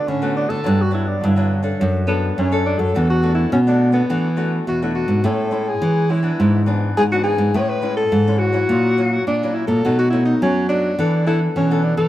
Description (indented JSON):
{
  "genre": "samba and choro",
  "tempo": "105 BPM",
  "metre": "4/4",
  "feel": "straight",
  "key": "unclear",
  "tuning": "A4 = 440 Hz",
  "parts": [
    { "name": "mellow alto saxophone", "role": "melody", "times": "0.0-12.1 s", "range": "B3 to C#5", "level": "-21 LUFS", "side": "left 1 dB", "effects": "none" },
    { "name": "nylon-string guitar", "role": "accompaniment", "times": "0.0-12.1 s", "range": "F#2 to A4", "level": "-25 LUFS", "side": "left 2 dB", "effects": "none" },
    { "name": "nylon-string guitar", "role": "bass", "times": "0.1-12.1 s", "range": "E2 to F#3", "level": "-18 LUFS", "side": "equal", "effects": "none" }
  ],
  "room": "moderate stone room reverb, RT60 1.0 s",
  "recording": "band playing live in one room",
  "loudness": "-16 LUFS",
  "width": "side -14 dB against mid",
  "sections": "0.0-12.1 A section",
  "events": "none",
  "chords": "0.0 D6; 0.7 Gmaj7; 1.8 Dmaj7/F#; 3.0 E9sus4; 5.2 Amaj7; 6.4 E7/G#; 7.5 Amaj7; 8.7 F#7/A#; 9.8 B7; 11.0 E7sus4",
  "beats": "0.08 | 0.66 1.23 1.80 2.38 | 2.95 3.53 4.10 4.67 | 5.25 5.82 6.39 6.97 | 7.54 8.12 8.69 9.26 | 9.84 10.41 10.98 11.55"
}